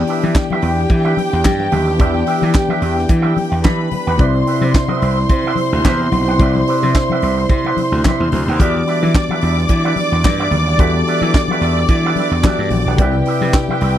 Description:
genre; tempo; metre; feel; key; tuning
disco; 109 BPM; 4/4; swing 56% on 16ths; E minor; A4 = 440 Hz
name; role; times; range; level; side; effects
dark studio string section; second line; 0.0-14.0 s; G4 to D6; -20 LUFS; equal; none
electric guitar with an envelope filter; accompaniment; 0.0-14.0 s; C4 to F#5; -24 LUFS; right 7 dB; none
tine electric piano; accompaniment; 0.0-14.0 s; C3 to D5; -21 LUFS; left 4 dB; none
mellow brass ensemble; sustained chords; 0.0-14.0 s; C3 to B4; -23 LUFS; right 4 dB; none
gritty slap bass; bass; 0.0-14.0 s; A#1 to E3; -18 LUFS; equal; overdrive
tight funk drum kit; drums; 0.1-14.0 s; handclaps, hi-hat, kick drum, snare drum; -15 LUFS; equal; none
congas; percussion; 0.2-13.8 s; none; -24 LUFS; left 6 dB; none
room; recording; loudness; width
little or no reverb; dry, close 1970s-style studio recording; -13 LUFS; side -11 dB against mid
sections
0.0-14.0 A section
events
none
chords
0.0 Em7; 4.2 Cmaj7; 8.6 Em7; 13.0 Cmaj7

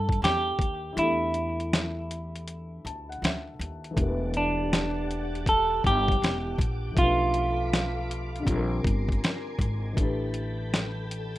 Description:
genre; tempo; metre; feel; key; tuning
lo-fi hip hop; 80 BPM; 4/4; swing 65% on 16ths; E minor; A4 = 441 Hz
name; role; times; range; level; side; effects
semi-hollow electric guitar; melody; 0.0-9.2 s; D4 to A4; -27 LUFS; right 1 dB; low-pass filter
felt-muted upright piano; accompaniment; 0.0-11.4 s; D3 to A5; -36 LUFS; left 3 dB; cassette tape, low-pass filter
upright bass; bass; 0.0-11.4 s; E1 to G2; -31 LUFS; equal; none
boom bap sampler-style drum kit; drums; 0.1-11.4 s; hi-hat, kick drum, snare drum; -27 LUFS; equal; vintage 12-bit sampler grit
ensemble organ-string; sustained chords; 4.0-11.4 s; G4 to D6; -39 LUFS; equal; ensemble chorus, low-pass filter
room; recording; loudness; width
moderate small room reverb, RT60 0.5 s; rough home demo mix; -24 LUFS; side -15 dB against mid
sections
0.0-4.0 A section; 4.0-11.4 A section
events
break 1.0-4.0; felt piano fill 2.5-4.0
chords
0.0 Em7; 4.0 Em11; 7.0 Bm7b5; 8.5 A#9; 10.0 A7sus2

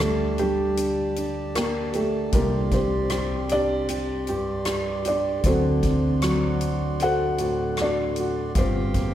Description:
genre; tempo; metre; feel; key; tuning
acoustic folk-pop ballad; 77 BPM; 4/4; straight; unclear; A4 = 440 Hz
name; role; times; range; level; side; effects
felt-muted upright piano; melody; 0.0-9.1 s; G3 to F#5; -25 LUFS; equal; none
nylon-string guitar; accompaniment; 0.0-9.1 s; G2 to A4; -28 LUFS; equal; none
hand-pumped harmonium; sustained chords; 0.0-9.1 s; F#4 to C6; -33 LUFS; right 3 dB; none
mellow fretless electric bass; bass; 0.0-9.1 s; G1 to D2; -30 LUFS; equal; none
soft-mallet drum kit; drums; 0.0-9.1 s; hi-hat, kick drum, rim click; -29 LUFS; equal; none
room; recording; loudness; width
moderate cathedral reverb, RT60 4.0 s; recorded in a church or concert hall; -21 LUFS; side -11 dB against mid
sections
0.0-9.1 A section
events
none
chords
0.0 Dsus4; 2.3 Csus2; 5.4 D7; 8.6 Gm7

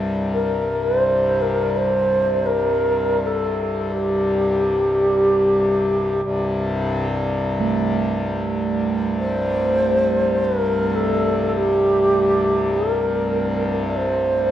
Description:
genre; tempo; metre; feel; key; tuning
world meditative, free-time meditation music; free time; none; none; unclear; A4 = 440 Hz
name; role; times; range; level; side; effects
hand-pumped harmonium; drone; 0.0-14.5 s; C2 to G2; -22 LUFS; left 1 dB; none
reedy low xiao; melody; 0.3-14.5 s; G4 to D5; -19 LUFS; equal; shimmer reverb, tape echo
bronze singing bowl; texture; 7.6-14.5 s; A3; -26 LUFS; right 8 dB; none
room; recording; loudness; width
wet echo chamber reverb, RT60 1.9 s, small room ambience; echo-heavy mix, cassette tape, nothing above 10.4 kHz; -17 LUFS; side -11 dB against mid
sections
0.0-14.5 A section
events
none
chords
none

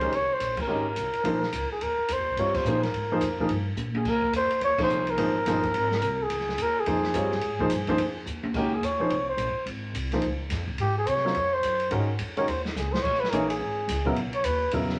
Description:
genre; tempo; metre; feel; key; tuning
modal jazz; 214 BPM; 4/4; swing 61% on 8ths; Db major from 8.5 s; A4 = 440 Hz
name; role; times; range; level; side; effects
trumpet with bucket mute; melody; 0.0-14.7 s; Eb4 to Db5; -29 LUFS; equal; none
warm upright piano; accompaniment; 0.0-15.0 s; Db3 to Db5; -30 LUFS; equal; none
upright bass; bass; 0.0-15.0 s; G1 to C3; -35 LUFS; equal; none
open jazz drum kit; drums; 0.0-14.9 s; crash cymbal, hi-hat, kick drum, ride cymbal, snare drum, toms; -36 LUFS; equal; none
room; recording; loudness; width
moderate large studio reverb, RT60 0.9 s; none; -27 LUFS; mono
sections
0.0-8.5 A section; 8.5-15.0 B section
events
band accent 0.5, 2.5, 4.8; drum fill 3.8, 8.3, 12.8; muted trumpet solo 8.5-15.0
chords
0.0 Abmaj9; 4.1 Dbmaj9; 13.0 Emaj9

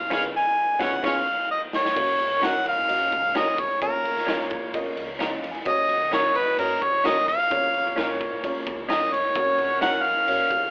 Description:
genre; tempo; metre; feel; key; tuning
uptempo 1960s-style soul; 130 BPM; 4/4; straight; F# major; A4 = 439 Hz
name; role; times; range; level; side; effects
warm harmonica; melody; 0.0-10.7 s; A#4 to G#5; -24 LUFS; equal; none
upright bass; bass; 0.0-10.7 s; E#1 to A#2; -48 LUFS; equal; none
warm horn section; second line; 0.1-10.7 s; F#3 to F#5; -36 LUFS; equal; none
dark upright piano; accompaniment; 0.1-10.6 s; A#2 to G#5; -33 LUFS; equal; none
direct-recorded clean electric guitar; stabs; 0.1-9.9 s; C#4 to B4; -35 LUFS; equal; none
raw garage drum kit; drums; 0.1-10.6 s; crash cymbal, kick drum, ride cymbal, snare drum; -33 LUFS; equal; none
room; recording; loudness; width
moderate large studio reverb, RT60 1.1 s; band playing live in one room, telephone sound; -24 LUFS; mono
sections
0.0-2.0 A section; 2.0-10.7 B section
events
band accent 0.1-2.0; drum fill 1.0-2.0; upright piano fill 5.0-5.7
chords
0.0 C#7; 2.0 F#; 3.8 A#m; 5.7 F#; 7.5 A#m; 9.4 F#

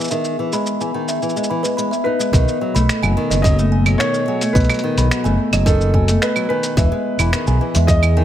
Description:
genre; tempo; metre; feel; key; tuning
folktronica; 108 BPM; 4/4; straight; unclear; A4 = 440 Hz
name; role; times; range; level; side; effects
warbly tape-like pad; sustained chords; 0.0-8.2 s; B2 to A4; -25 LUFS; left 5 dB; chorus, built-in reverb, vintage 12-bit sampler grit
nylon-string guitar; arpeggios; 0.0-8.2 s; D#3 to D#4; -23 LUFS; equal; ping-pong delay
lo-fi sampler-style drum kit; drums; 0.0-8.1 s; cabasa, claves, finger snaps, hi-hat; -23 LUFS; right 2 dB; none
kalimba; second line; 0.1-8.2 s; B4 to B5; -24 LUFS; right 5 dB; ping-pong delay
felt-muted upright piano; melody; 2.0-8.2 s; A4 to D#5; -23 LUFS; equal; vintage 12-bit sampler grit, ping-pong delay
overdriven fingered electric bass; bass; 2.3-8.2 s; E1 to E2; -16 LUFS; equal; none
electronic kick drum; drums; 2.3-8.0 s; none; -16 LUFS; equal; none
room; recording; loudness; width
light reverb, studio reverb; none; -15 LUFS; side -11 dB against mid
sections
0.0-2.3 A section; 2.3-8.2 B section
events
filter sweep on ambient pad 0.0-2.3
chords
0.0 Emaj7; 2.3 B7; 6.8 Emaj7

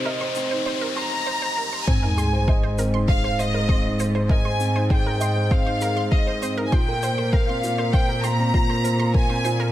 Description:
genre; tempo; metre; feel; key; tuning
piano and strings electronica; 99 BPM; 4/4; straight; unclear; A4 = 440 Hz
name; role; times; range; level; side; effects
analog pluck; arpeggios; 0.0-9.7 s; Bb4 to C6; -33 LUFS; right 4 dB; chorus, sidechain pumping, tape echo
felt-muted upright piano; riff; 0.0-9.7 s; Bb3 to Eb5; -27 LUFS; equal; none
warm studio cello section; bass; 0.0-9.7 s; Ab2 to C3; -25 LUFS; equal; sidechain pumping
riser and sub drop; sound effects; 0.0-4.3 s; none; -28 LUFS; left 1 dB; none
shaker; drums; 0.3-9.6 s; none; -37 LUFS; equal; none
rich chamber violin section; melody; 1.0-9.7 s; Eb5 to Bb5; -26 LUFS; equal; none
electronic kick drum; drums; 1.9-9.3 s; none; -20 LUFS; equal; overdrive
room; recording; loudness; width
light reverb, studio reverb; none; -19 LUFS; side -13 dB against mid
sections
0.0-1.9 A section; 1.9-9.7 B section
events
build-up 0.0-1.9; riser 0.0-1.9; drop 1.9-9.7; impact 1.9-4.3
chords
0.0 Cm; 1.9 Ab; 6.7 Bbsus2

